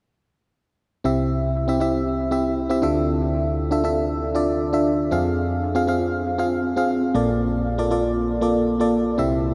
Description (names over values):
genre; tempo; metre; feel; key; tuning
pop; 118 BPM; 4/4; straight; C mixolydian; A4 = 442 Hz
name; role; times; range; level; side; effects
FM electric piano; solo; 1.0-9.5 s; Bb1 to F5; -22 LUFS; equal; chorus, analog delay
room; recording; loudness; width
wet huge ambient reverb, RT60 7.9 s; dreamy mix soaked in reverb; -22 LUFS; mono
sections
1.0-9.2 A section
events
none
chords
1.0 C; 2.8 Dmadd9; 5.1 Fm; 7.1 Bbmaj7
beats
| 1.05 1.56 2.06 2.57 | 3.08 3.59 4.10 4.61 | 5.12 5.62 6.13 6.64 | 7.15 7.66 8.17 8.68 | 9.18